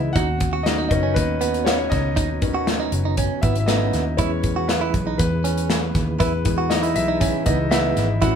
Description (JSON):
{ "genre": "piano-driven pop", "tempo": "119 BPM", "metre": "4/4", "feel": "straight", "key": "unclear", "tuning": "A4 = 440 Hz", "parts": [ { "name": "clear grand piano", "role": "accompaniment", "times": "0.0-8.4 s", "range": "D#3 to F#5", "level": "-24 LUFS", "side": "left 3 dB", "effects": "none" }, { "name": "mellow tonewheel organ", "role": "sustained chords", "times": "0.0-8.4 s", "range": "D#3 to B4", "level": "-31 LUFS", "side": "equal", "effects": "chorus vibrato, stopped rotary speaker" }, { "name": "vintage muted picked electric bass", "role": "bass", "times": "0.0-8.4 s", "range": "F#1 to E2", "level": "-24 LUFS", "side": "equal", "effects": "none" }, { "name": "direct-recorded clean electric guitar", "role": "riff", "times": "0.2-8.3 s", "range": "B3 to F#4", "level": "-25 LUFS", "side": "right 8 dB", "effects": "none" }, { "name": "modern studio drum kit", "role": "drums", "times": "0.2-8.3 s", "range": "hi-hat, kick drum, snare drum", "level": "-23 LUFS", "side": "equal", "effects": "none" } ], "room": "moderate studio reverb, RT60 0.5 s", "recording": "band playing live in one room", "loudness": "-18 LUFS", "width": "side -7 dB against mid", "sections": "0.0-8.4 A section", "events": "grand piano solo 0.0-8.4", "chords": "0.2 Badd9; 4.2 E" }